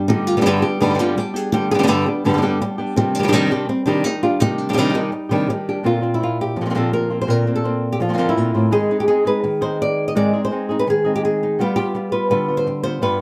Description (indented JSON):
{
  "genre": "flamenco",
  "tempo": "167 BPM",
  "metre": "4/4",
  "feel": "straight",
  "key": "G phrygian dominant",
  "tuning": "A4 = 439 Hz",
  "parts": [
    { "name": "flamenco guitar", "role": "melody", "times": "0.0-13.2 s", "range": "G2 to Eb5", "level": "-20 LUFS", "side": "equal", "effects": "none" },
    { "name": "flamenco guitar", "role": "stabs", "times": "0.0-13.2 s", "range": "G2 to Ab4", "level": "-26 LUFS", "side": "equal", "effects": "none" }
  ],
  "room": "light reverb",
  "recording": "close, detailed microphones",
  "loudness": "-19 LUFS",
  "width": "mono",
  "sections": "0.1-5.8 A section; 5.8-13.2 B section",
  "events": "none",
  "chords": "0.1 G; 3.0 Cmadd9; 5.8 Bbadd9; 8.7 Ab; 11.6 G7",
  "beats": "| 0.09 0.45 0.81 1.17 | 1.53 1.89 2.25 2.61 | 2.97 3.33 3.69 4.05 | 4.41 4.77 5.13 5.49 | 5.84 6.20 6.56 6.92 | 7.28 7.64 8.00 8.36 | 8.72 9.08 9.44 9.80 | 10.16 10.52 10.88 11.24 | 11.60 11.96 12.31 12.67 | 13.03"
}